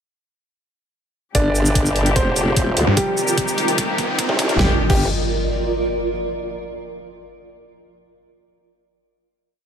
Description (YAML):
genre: heavy wobble dubstep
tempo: 148 BPM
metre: 4/4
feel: half-time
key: G minor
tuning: A4 = 440 Hz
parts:
  - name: clear concert grand piano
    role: melody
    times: 1.3-5.0 s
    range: G3 to D5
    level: -24 LUFS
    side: equal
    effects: dub echo
  - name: muted studio string section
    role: sustained chords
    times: 1.3-4.8 s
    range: Bb2 to G4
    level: -24 LUFS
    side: left 2 dB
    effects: sidechain pumping
  - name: formant-sweep wobble bass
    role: bass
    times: 1.3-5.1 s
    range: F1 to D2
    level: -19 LUFS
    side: equal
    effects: chorus, overdrive
  - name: dubstep drum kit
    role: drums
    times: 1.3-5.0 s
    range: crash cymbal, hi-hat, shaker, snare drum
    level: -24 LUFS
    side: equal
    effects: small room reverb
  - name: electronic kick drum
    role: drums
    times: 1.3-5.0 s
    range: none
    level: -22 LUFS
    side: equal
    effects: overdrive, small room reverb
  - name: riser and impact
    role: sound effects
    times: 2.8-6.2 s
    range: none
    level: -26 LUFS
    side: equal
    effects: none
  - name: granular cloud pad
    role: texture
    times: 2.3-6.2 s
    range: F4 to Eb5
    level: -25 LUFS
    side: right 2 dB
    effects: built-in reverb, sidechain pumping
  - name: snarling distorted saw bass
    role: bass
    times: 2.9-3.0 s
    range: G2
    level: -16 LUFS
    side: left 1 dB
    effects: distortion, overdrive
room: light reverb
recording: high-pass filter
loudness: -16 LUFS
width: side -8 dB against mid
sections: 1.3-4.6 build; 4.6-6.2 final chord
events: build-up 1.3-4.6; filter sweep 1.3-4.6; riser 2.8-4.6; drum fill 3.0-4.6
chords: 1.3 Gm; 3.0 Cm; 4.6 Gm